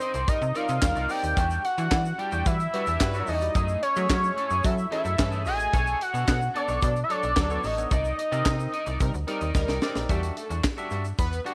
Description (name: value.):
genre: early-eighties boogie funk.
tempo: 110 BPM.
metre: 4/4.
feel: straight.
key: unclear.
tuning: A4 = 440 Hz.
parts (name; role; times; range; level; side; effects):
fat analog lead; melody; 0.0-9.6 s; C5 to G#5; -29 LUFS; equal; phaser.
electric guitar at the edge of break-up; riff; 0.0-11.5 s; G3 to Eb5; -40 LUFS; equal; analog chorus.
tight funk drum kit; drums; 0.0-11.5 s; handclaps, hi-hat, kick drum, snare drum; -30 LUFS; equal; none.
tube shaker; percussion; 0.0-11.5 s; none; -52 LUFS; equal; none.
slap-like FM bass; bass; 0.1-11.4 s; A1 to F#3; -31 LUFS; equal; none.
analog synth brass; second line; 0.3-11.4 s; E3 to B4; -37 LUFS; equal; chorus.
barky tine electric piano; accompaniment; 0.5-11.5 s; G3 to F#5; -39 LUFS; equal; none.
room: light reverb, studio reverb.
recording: none.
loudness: -26 LUFS.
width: mono.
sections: 0.0-10.1 A section; 10.1-11.5 B section.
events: drum fill 9.6-10.1.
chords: 0.0 Cm9; 1.4 Em9; 3.5 F#m9; 5.7 Bm9; 7.9 Cm9; 10.1 Em9.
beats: 0.28 0.82 | 1.37 1.91 2.46 3.00 | 3.55 4.10 4.64 5.19 | 5.73 6.28 6.82 7.37 | 7.91 8.46 9.01 9.55 | 10.10 10.64 11.19.